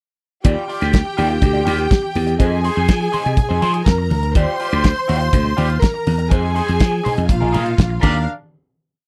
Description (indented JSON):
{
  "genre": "disco",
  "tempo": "123 BPM",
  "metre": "4/4",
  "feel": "straight",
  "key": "Eb major",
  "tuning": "A4 = 440 Hz",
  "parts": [
    { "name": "clear studio string section", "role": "second line", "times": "0.4-8.3 s", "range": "D4 to C6", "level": "-24 LUFS", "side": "equal", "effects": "none" },
    { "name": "electric guitar at the edge of break-up", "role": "accompaniment", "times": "0.4-8.2 s", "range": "Eb4 to D5", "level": "-26 LUFS", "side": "equal", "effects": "wah" },
    { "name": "damped 70s drum kit", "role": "drums", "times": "0.4-8.1 s", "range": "crash cymbal, hi-hat, kick drum, snare drum", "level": "-17 LUFS", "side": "equal", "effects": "none" },
    { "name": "congas", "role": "percussion", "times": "0.4-8.3 s", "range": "none", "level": "-29 LUFS", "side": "equal", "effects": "none" },
    { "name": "slap bass", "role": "bass", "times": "0.5-8.3 s", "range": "Bb1 to F3", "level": "-21 LUFS", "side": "equal", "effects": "none" }
  ],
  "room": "little or no reverb",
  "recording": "dry, close 1970s-style studio recording",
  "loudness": "-17 LUFS",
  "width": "mono",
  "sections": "0.4-8.3 verse; 8.3-9.1 final hit",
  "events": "none",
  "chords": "0.4 Ebmaj9; 2.4 Fm7; 4.4 Ebmaj9; 6.3 Fm7; 7.3 Bb7sus4; 8.0 Ebmaj9; 8.3 N.C."
}